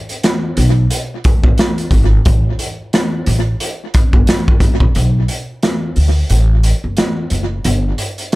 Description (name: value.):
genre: hip hop, boom-bap hip-hop.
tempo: 89 BPM.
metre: 4/4.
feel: swing 59% on 16ths.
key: unclear.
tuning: A4 = 440 Hz.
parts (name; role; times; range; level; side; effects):
raw garage drum kit; drums; 0.1-8.4 s; hi-hat, kick drum, rim click, snare drum; -14 LUFS; equal; tape echo.
upright bass; bass; 0.6-7.9 s; F#1 to D2; -14 LUFS; equal; none.
room: little or no reverb.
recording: echo-heavy mix.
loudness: -12 LUFS.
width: side -20 dB against mid.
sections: 0.0-5.0 A section; 5.0-8.4 B section.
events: kick muted 5.0-8.4.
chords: none.